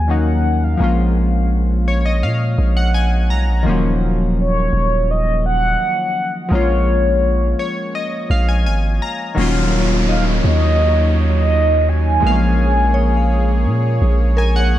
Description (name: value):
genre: contemporary R&B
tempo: 84 BPM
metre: 4/4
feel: straight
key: Eb minor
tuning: A4 = 440 Hz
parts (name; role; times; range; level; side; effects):
- mellow horn-like synth lead; melody; 0.0-14.0 s; Db5 to Ab5; -20 LUFS; equal; chorus, phaser, tape echo
- warm analog keys; accompaniment; 0.0-14.8 s; Eb3 to Bb5; -20 LUFS; left 2 dB; chorus
- long sustained 808-style bass; bass; 0.0-14.8 s; Eb1 to Bb2; -16 LUFS; equal; none
- warm analog pad; sustained chords; 9.4-14.8 s; Gb3 to Db5; -24 LUFS; right 2 dB; chorus
- downlifter; sound effects; 9.4-14.8 s; none; -27 LUFS; right 1 dB; none
- glassy synth bell; texture; 10.1-14.8 s; Bb4 to F5; -28 LUFS; equal; chorus, tremolo, tape echo
room: little or no reverb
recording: none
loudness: -14 LUFS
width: side -13 dB against mid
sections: 0.0-9.4 A section; 9.4-14.8 B section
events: synth keys fill 1.5-3.7, 7.2-9.4, 14.0-14.8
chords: 0.0 Ebm7; 0.8 Bbm7; 3.7 Ebm7; 6.5 Bbm7; 9.4 Ebm7; 12.2 Bbm7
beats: 0.08 | 0.80 1.51 2.23 2.94 | 3.65 4.37 5.08 5.80 | 6.51 7.23 7.94 8.65 | 9.37 10.08 10.80 11.51 | 12.23 12.94 13.65 14.37